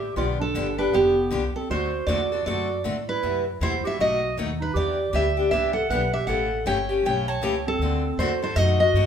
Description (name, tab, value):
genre	acoustic string swing (jazz manouche)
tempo	157 BPM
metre	4/4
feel	swing 61% on 8ths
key	D mixolydian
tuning	A4 = 440 Hz
part	picked steel-string acoustic guitar	melody	0.0-9.1 s	G4 to A5	-24 LUFS	right 1 dB	none
part	dark clarinet	second line	0.0-9.1 s	B3 to C#5	-30 LUFS	right 2 dB	none
part	upright bass	bass	0.0-9.1 s	F1 to A2	-28 LUFS	equal	none
part	picked steel-string acoustic guitar	accompaniment	0.2-9.1 s	B2 to A4	-28 LUFS	left 4 dB	none
room	moderate large studio reverb, RT60 0.9 s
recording	band playing live in one room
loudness	-21 LUFS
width	side -8 dB against mid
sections	0.0-9.1 A section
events	none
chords	0.0 G7; 1.7 D7; 3.2 F#m7b5; 4.0 B7; 4.8 Em7; 6.3 A7; 7.8 D7